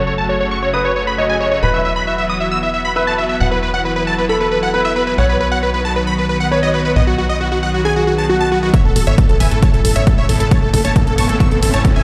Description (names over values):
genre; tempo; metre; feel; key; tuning
uplifting trance; 135 BPM; 4/4; straight; unclear; A4 = 440 Hz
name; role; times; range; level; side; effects
dense compressed supersaw; melody; 0.0-12.0 s; F#4 to E6; -20 LUFS; equal; sidechain pumping, low-pass filter, tape echo
tight sequencer bass; bass; 0.0-12.0 s; E1 to B1; -23 LUFS; equal; sidechain pumping
lush unison pad; sustained chords; 0.2-12.0 s; C#3 to F#4; -24 LUFS; equal; chorus, sidechain pumping
warm grand piano; second line; 0.7-8.7 s; F#4 to D#5; -22 LUFS; equal; tape echo
electronic hi-hat; drums; 8.7-11.9 s; none; -28 LUFS; equal; low-pass filter on hats
electronic kick drum; drums; 8.7-11.9 s; none; -16 LUFS; equal; none
riser; sound effects; 9.8-12.0 s; none; -28 LUFS; equal; none
room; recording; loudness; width
light reverb; played on a big sound system in a bare room, large studio reverb; -15 LUFS; mono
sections
0.0-8.7 A section; 8.7-12.0 B section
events
build-up 8.7-12.0; riser 9.8-12.0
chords
0.0 F#m; 1.6 Esus2; 5.2 B; 8.7 Aadd9